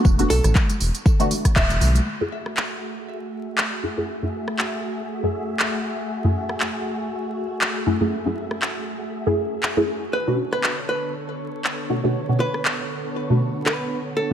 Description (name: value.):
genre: deep house.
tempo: 119 BPM.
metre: 4/4.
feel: swing 56% on 16ths.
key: F# minor.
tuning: A4 = 442 Hz.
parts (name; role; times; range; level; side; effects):
filtered dub chord stab; stabs; 0.0-14.3 s; F#2 to G#4; -23 LUFS; equal; phaser, ensemble chorus, sidechain pumping.
round analog bass; bass; 0.0-2.0 s; D1 to B1; -20 LUFS; equal; sidechain pumping.
electronic kick drum; drums; 0.0-1.7 s; none; -18 LUFS; equal; none.
house drum kit; drums; 0.1-13.8 s; handclaps, hi-hat, rim click, tambourine; -26 LUFS; equal; none.
congas; percussion; 0.2-2.0 s; none; -30 LUFS; left 2 dB; none.
archtop guitar, miked and amplified; melody; 0.3-1.9, 10.1-14.3 s; A4 to E5; -27 LUFS; equal; ping-pong delay.
soft string machine; sustained chords; 2.1-14.3 s; D3 to E5; -29 LUFS; equal; phaser, ensemble chorus, vintage 12-bit sampler grit, sidechain pumping.
room: light reverb.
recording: vinyl crackle.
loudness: -20 LUFS.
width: side -9 dB against mid.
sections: 0.0-2.1 A section; 2.1-14.3 B section.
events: band accent 1.6; filter sweep on synth stab 2.1-14.3.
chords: 0.0 E7sus4; 2.1 F#m9; 10.1 Bm9.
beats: | 0.05 0.55 1.06 1.56 | 2.06 2.57 3.07 3.58 | 4.08 4.59 5.09 5.59 | 6.10 6.60 7.11 7.61 | 8.12 8.62 9.12 9.63 | 10.13 10.64 11.14 11.64 | 12.15 12.65 13.16 13.66 | 14.17.